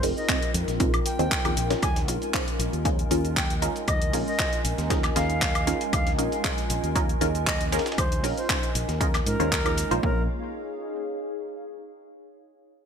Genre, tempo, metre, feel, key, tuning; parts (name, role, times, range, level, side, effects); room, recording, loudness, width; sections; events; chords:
deep house; 117 BPM; 4/4; swing 53% on 16ths; A4 = 440 Hz
breathy bright concert flute; melody; 0.0-10.2 s; Bb4 to Ab5; -32 LUFS; equal; digital delay
hollow soft pad; sustained chords; 0.0-10.3 s; Ab3 to F5; -36 LUFS; right 2 dB; ensemble chorus, sidechain pumping
filtered dub chord stab; stabs; 0.0-10.3 s; Bb3 to Db5; -29 LUFS; equal; phaser, analog chorus, sidechain pumping
fingered electric bass; bass; 0.0-10.3 s; F1 to Ab2; -30 LUFS; equal; sidechain pumping
deep house drum kit; drums; 0.0-10.0 s; handclaps, hi-hat, shaker, woodblock; -29 LUFS; left 1 dB; overdrive, gated reverb
dusty soul sampler-style drum kit; drums; 0.0-9.9 s; hi-hat, snare drum; -38 LUFS; equal
warbly tape-like pad; texture; 0.0-12.0 s; Eb4 to Ab5; -34 LUFS; equal; chorus, built-in reverb, sidechain pumping
electronic kick drum; drums; 0.3-10.1 s; -28 LUFS; equal
light reverb; bright 1980s-style digital production; -23 LUFS; side -7 dB against mid
0.0-10.0 A section; 10.0-12.1 B section
drop 0.0-10.0
0.0 Bb9sus4; 1.8 Eb9sus4